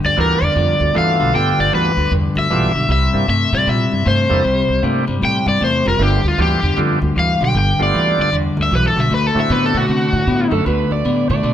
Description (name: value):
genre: blues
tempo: 154 BPM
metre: 4/4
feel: swing 63% on 8ths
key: G mixolydian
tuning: A4 = 441 Hz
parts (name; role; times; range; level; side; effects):
- electric guitar at the edge of break-up; riff; 0.0-11.5 s; G2 to B3; -19 LUFS; left 2 dB; spring reverb
- upright bass; bass; 0.0-11.5 s; F1 to C3; -20 LUFS; right 1 dB; none
- cranked stack guitar; melody; 0.1-10.5 s; F4 to G5; -18 LUFS; left 1 dB; overdrive
- overdriven tonewheel organ; accompaniment; 0.2-9.9 s; A3 to A4; -24 LUFS; right 5 dB; slow rotary speaker
- overdriven slide guitar; second line; 10.5-11.5 s; A4 to D5; -23 LUFS; right 6 dB; none
room: light reverb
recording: none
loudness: -14 LUFS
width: side -10 dB against mid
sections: 0.0-11.5 A section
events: none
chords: 0.0 G7; 2.9 C7; 6.0 G7; 9.1 D7